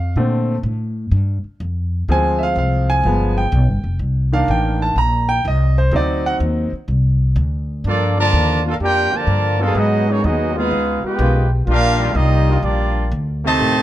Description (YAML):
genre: jazz, big band swing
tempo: 125 BPM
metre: 4/4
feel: swing 68% on 8ths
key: G minor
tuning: A4 = 440 Hz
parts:
  - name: bright upright piano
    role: accompaniment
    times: 0.0-6.7 s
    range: D3 to Bb5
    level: -19 LUFS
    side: right 1 dB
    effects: none
  - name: upright bass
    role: bass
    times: 0.0-13.8 s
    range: F1 to Bb2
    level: -17 LUFS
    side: equal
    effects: none
  - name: warm trumpet section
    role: melody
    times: 7.9-13.8 s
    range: Bb3 to A5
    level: -19 LUFS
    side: right 1 dB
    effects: none
  - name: clear trombone section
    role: second line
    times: 7.9-13.8 s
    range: C3 to G4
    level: -22 LUFS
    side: equal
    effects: none
  - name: bright trombone section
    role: sustained chords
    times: 9.6-13.8 s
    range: Eb3 to Ab4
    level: -25 LUFS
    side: left 2 dB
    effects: none
room: light reverb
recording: dark, warm production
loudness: -15 LUFS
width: side -13 dB against mid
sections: 0.0-7.8 A section; 7.8-13.8 B section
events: upright piano solo 0.0-7.8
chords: 0.2 Bbmaj9; 2.1 Dm7b5; 3.0 G7b9; 4.0 Cm9; 5.9 D7b9; 7.8 Gm9; 9.8 Abm7; 10.7 C#9; 11.7 Ebmaj9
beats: | 0.16 0.64 1.12 1.60 | 2.08 2.56 3.04 3.52 | 4.00 4.48 4.96 5.44 | 5.92 6.40 6.88 7.36 | 7.84 8.32 8.80 9.28 | 9.76 10.24 10.72 11.20 | 11.68 12.16 12.63 13.12 | 13.59